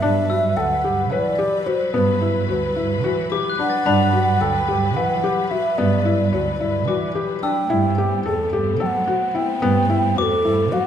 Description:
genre	contemporary instrumental, chamber music in an uneven meter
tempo	219 BPM (eighths)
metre	7/8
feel	straight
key	G major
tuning	A4 = 441 Hz
part	breathy mellow round clay ocarina	melody	0.0-10.9 s	A4 to G5	-22 LUFS	right 1 dB	none
part	rich studio string section	sustained chords	0.0-10.9 s	F#3 to B4	-28 LUFS	left 3 dB	none
part	felt-muted upright piano	arpeggios	0.0-10.9 s	B3 to B4	-23 LUFS	left 6 dB	none
part	muted double bass	bass	0.0-10.9 s	D2 to F#3	-23 LUFS	right 4 dB	none
part	glockenspiel with soft plastic mallets	texture	0.3-10.9 s	B5 to A6	-30 LUFS	left 4 dB	none
room	wet recital hall reverb, RT60 1.5 s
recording	dark, warm production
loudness	-17 LUFS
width	side -9 dB against mid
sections	0.0-10.9 A section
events	none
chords	0.0 Gmaj7; 7.7 Amadd9

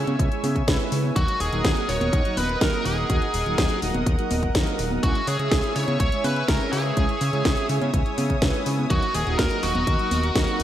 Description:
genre	italo disco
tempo	124 BPM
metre	4/4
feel	straight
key	C# dorian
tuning	A4 = 441 Hz
part	lush unison pad	sustained chords	0.0-10.6 s	A#4 to E6	-31 LUFS	equal	chorus
part	mellow synth brass	stabs	0.0-10.6 s	F#3 to B4	-30 LUFS	right 3 dB	chorus, vintage 12-bit sampler grit
part	fat analog bass	bass	0.0-10.6 s	D#1 to C#3	-26 LUFS	equal	none
part	house drum kit	drums	0.1-10.6 s	congas, hi-hat, snare drum	-27 LUFS	equal	gated reverb
part	electronic kick drum	drums	0.2-10.5 s	none	-24 LUFS	equal	none
part	bluesy overdriven lead guitar	melody	1.2-10.6 s	F#4 to C#5	-27 LUFS	equal	distortion, digital delay
room	moderate lush hall reverb, RT60 1.8 s, digital ambience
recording	bright 1980s-style digital production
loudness	-20 LUFS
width	side -11 dB against mid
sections	0.0-10.6 A section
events	none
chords	0.0 C#m; 1.2 D#m; 5.0 C#m; 8.9 D#m

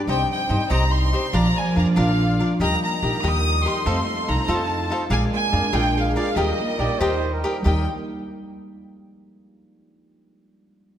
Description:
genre	mexican folk, mariachi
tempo	95 BPM (dotted quarters)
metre	6/8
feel	rubato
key	Eb major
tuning	A4 = 440 Hz
part	muted studio violin section	sustained chords	0.0-7.8 s	G3 to D5	-33 LUFS	right 1 dB	none
part	concert harp	arpeggios	0.0-8.7 s	F3 to G5	-25 LUFS	right 1 dB	none
part	clear chamber violin section	melody	0.1-7.8 s	Eb5 to Eb6	-25 LUFS	equal	none
part	cavaquinho	accompaniment	0.1-7.8 s	D4 to G5	-28 LUFS	left 2 dB	none
part	upright bass	bass	0.1-7.9 s	Bb1 to G2	-23 LUFS	equal	none
part	dark trumpet	second line	6.8-7.9 s	Bb4 to D5	-29 LUFS	right 5 dB	none
room	wet concert hall reverb, RT60 2.0 s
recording	none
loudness	-19 LUFS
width	side -10 dB against mid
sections	0.0-7.6 A section; 7.6-8.9 B section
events	none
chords	0.1 Cm; 1.3 Bb; 3.9 F7; 5.1 Bb7; 6.4 Eb

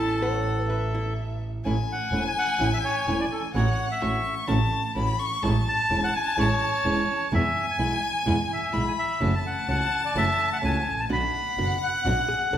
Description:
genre	tango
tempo	127 BPM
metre	4/4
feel	rubato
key	A major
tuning	A4 = 440 Hz
part	bandoneon	melody	0.0-12.6 s	A4 to B5	-27 LUFS	equal	none
part	warm violin	second line	0.0-12.6 s	E5 to C#6	-29 LUFS	left 3 dB	none
part	nylon-string guitar	accompaniment	0.0-12.6 s	B2 to F#4	-30 LUFS	right 2 dB	none
part	clear double bass	bass	0.0-12.6 s	E1 to E2	-28 LUFS	right 1 dB	none
part	hollow-body jazz guitar	second line	0.2-1.6, 12.3-12.6 s	E4 to C#5	-34 LUFS	left 2 dB	none
room	wet recital hall reverb, RT60 1.4 s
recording	recorded in a church or concert hall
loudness	-22 LUFS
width	side -10 dB against mid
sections	0.0-1.6 A section; 1.6-12.6 B section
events	none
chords	0.0 Aadd9; 1.6 A; 3.5 F#m7/A; 5.4 Amaj7; 7.3 E; 9.2 F#m7; 11.1 Bm

